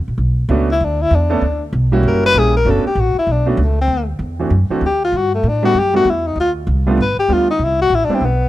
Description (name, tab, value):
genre	jazz, small-group swing and bop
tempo	194 BPM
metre	4/4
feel	swing 62% on 8ths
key	B minor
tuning	A4 = 445 Hz
part	upright bass	bass	0.0-8.5 s	F#1 to A2	-17 LUFS	equal	none
part	clear concert grand piano	accompaniment	0.5-8.2 s	E3 to A4	-19 LUFS	right 3 dB	none
part	breathy tenor saxophone	melody	0.7-8.5 s	F#3 to B4	-16 LUFS	left 3 dB	none
room	small room reverb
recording	dry, close 1970s-style studio recording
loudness	-13 LUFS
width	side -15 dB against mid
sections	0.0-2.7 A section; 2.7-8.5 A section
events	tenor saxophone solo 0.0-8.5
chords	0.2 Bm9; 2.0 F#7b9; 2.7 Bm9; 3.9 D9; 5.1 Gmaj9; 6.4 Dm7; 7.0 G9; 7.6 Cmaj7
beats	| 0.19 0.50 0.81 1.11 | 1.42 1.73 2.04 2.35 | 2.66 2.97 3.28 3.59 | 3.90 4.21 4.51 4.82 | 5.13 5.44 5.75 6.06 | 6.37 6.68 6.99 7.29 | 7.60 7.91 8.22